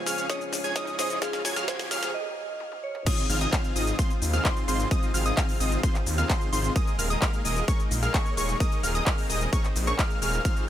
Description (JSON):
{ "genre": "EDM, festival progressive house", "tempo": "130 BPM", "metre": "4/4", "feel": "straight", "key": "Ab major", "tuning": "A4 = 440 Hz", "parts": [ { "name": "soft synth bell", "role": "melody", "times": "0.0-3.0 s", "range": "Ab4 to Eb5", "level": "-35 LUFS", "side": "right 1 dB", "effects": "chorus, dub echo" }, { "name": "mellow electric guitar", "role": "accompaniment", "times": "0.0-2.1 s", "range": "Db3 to F4", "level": "-43 LUFS", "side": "right 3 dB", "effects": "sidechain pumping, dub echo" }, { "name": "lush unison pad", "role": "sustained chords", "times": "0.0-10.7 s", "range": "Db2 to Bb4", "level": "-38 LUFS", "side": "right 1 dB", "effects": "chorus, vintage 12-bit sampler grit, sidechain pumping" }, { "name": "plucky unison lead", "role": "arpeggios", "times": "0.0-10.7 s", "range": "C6 to Ab6", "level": "-32 LUFS", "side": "equal", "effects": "sidechain pumping, dub echo" }, { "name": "dense compressed supersaw", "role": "riff", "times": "0.0-10.7 s", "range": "C4 to Ab5", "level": "-33 LUFS", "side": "equal", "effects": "sidechain pumping, dub echo" }, { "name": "riser", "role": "sound effects", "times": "0.0-2.1 s", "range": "none", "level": "-38 LUFS", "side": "right 1 dB", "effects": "none" }, { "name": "pop drum kit", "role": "drums", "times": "0.1-10.7 s", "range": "crash cymbal, handclaps, hi-hat, ride cymbal, shaker, snare drum, toms", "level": "-32 LUFS", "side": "left 1 dB", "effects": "high-pass filter on snare, high-pass filter on hats, high-pass filter on perc, high-pass filter on toms, high-pass filter on cymbals" }, { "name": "electronic kick drum", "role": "drums", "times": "0.3-10.5 s", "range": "none", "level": "-26 LUFS", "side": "equal", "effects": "overdrive, high-pass filter on kick" }, { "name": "wide detuned saw bass", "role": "bass", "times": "3.3-10.4 s", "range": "Eb1 to Eb2", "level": "-27 LUFS", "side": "equal", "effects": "chorus, sidechain pumping" } ], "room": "little or no reverb", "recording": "high-pass filter", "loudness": "-24 LUFS", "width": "side -11 dB against mid", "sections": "0.0-3.1 A section; 3.1-10.7 B section", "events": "build-up 0.0-3.1; drum fill 0.0-2.1, 2.6-3.1; riser 0.0-2.1; filter sweep 0.0-3.1; break 2.1-3.1; drop 3.1-10.7", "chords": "0.0 Db; 3.1 Ab6; 6.8 Ebsus4" }